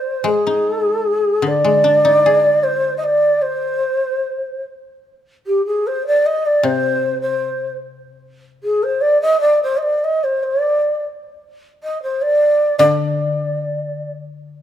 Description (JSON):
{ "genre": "japanese traditional, Japanese chamber music", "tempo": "76 BPM", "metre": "2/4", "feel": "rubato", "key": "unclear", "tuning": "A4 = 442 Hz", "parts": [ { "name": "mellow long shakuhachi", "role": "melody", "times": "0.0-14.1 s", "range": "G4 to Eb5", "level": "-15 LUFS", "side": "equal", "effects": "none" }, { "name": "koto", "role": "accompaniment", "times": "0.2-3.8, 6.6-9.0, 12.8-14.6 s", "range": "C3 to Ab4", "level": "-22 LUFS", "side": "left 5 dB", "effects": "none" } ], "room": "moderate scoring stage reverb, RT60 1.8 s", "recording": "none", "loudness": "-14 LUFS", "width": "side -10 dB against mid", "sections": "0.0-5.0 A section; 5.0-14.6 B section", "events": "none", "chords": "none" }